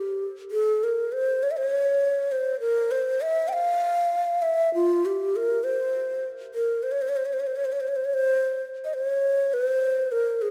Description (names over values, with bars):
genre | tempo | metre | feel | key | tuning
turkish | 200 BPM (eighths) | 7/8 | straight | C makam hicaz | A4 = 440 Hz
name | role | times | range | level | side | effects
breathy mellow low ney | solo | 0.0-10.5 s | F4 to G5 | -25 LUFS | equal | tape echo
room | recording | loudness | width
moderate recital hall reverb, RT60 1.8 s | none | -25 LUFS | mono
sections
0.0-8.9 A section; 8.9-10.5 B section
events
none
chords
none